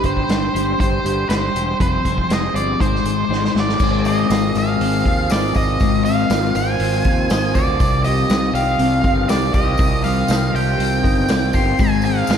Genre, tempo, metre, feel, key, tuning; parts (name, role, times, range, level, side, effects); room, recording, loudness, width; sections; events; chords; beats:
psychedelic rock; 120 BPM; 4/4; straight; A4 = 440 Hz
octave-fuzz lead guitar; melody; 0.0-12.4 s; C5 to C6; -21 LUFS; right 1 dB; distortion, tape echo
twelve-string electric guitar; riff; 0.0-12.4 s; C3 to Eb5; -21 LUFS; left 4 dB; phaser
fuzz fingered electric bass; bass; 0.0-12.4 s; E1 to Eb2; -22 LUFS; equal; overdrive
vintage drum kit; drums; 0.0-12.4 s; crash cymbal, hi-hat, kick drum, snare drum; -21 LUFS; equal
pedal harmonium; sustained chords; 3.8-12.4 s; Eb3 to Ab4; -26 LUFS; right 5 dB
tambourine; percussion; 3.8-12.4 s; -39 LUFS; left 9 dB
moderate lush hall reverb, RT60 1.7 s; dreamy mix soaked in reverb; -15 LUFS; side -8 dB against mid
0.0-3.8 A section; 3.8-12.4 B section
drum fill 3.3-3.8
0.0 Gsus4; 1.8 Fmadd9; 2.8 Ab; 3.8 Ab6; 7.8 Cmadd9; 11.8 Ab6
0.30 0.80 1.30 | 1.80 2.30 2.80 3.30 | 3.80 4.30 4.80 5.30 | 5.80 6.30 6.80 7.30 | 7.79 8.29 8.79 9.29 | 9.79 10.28 10.78 11.28 | 11.78 12.27